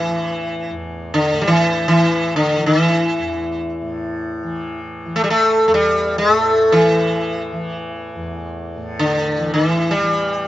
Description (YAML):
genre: indian classical, Hindustani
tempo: free time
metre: none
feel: none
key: unclear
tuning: A4 = 441 Hz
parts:
  - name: sitar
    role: melody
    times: 0.0-10.5 s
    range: D3 to A3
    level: -16 LUFS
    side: equal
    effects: none
  - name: tanpura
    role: drone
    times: 0.0-10.5 s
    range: E2 to E3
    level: -27 LUFS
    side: equal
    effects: none
room: little or no reverb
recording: recorded outdoors, with no room sound, nothing above 7.8 kHz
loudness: -15 LUFS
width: side -14 dB against mid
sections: 0.0-10.5 A section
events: none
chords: none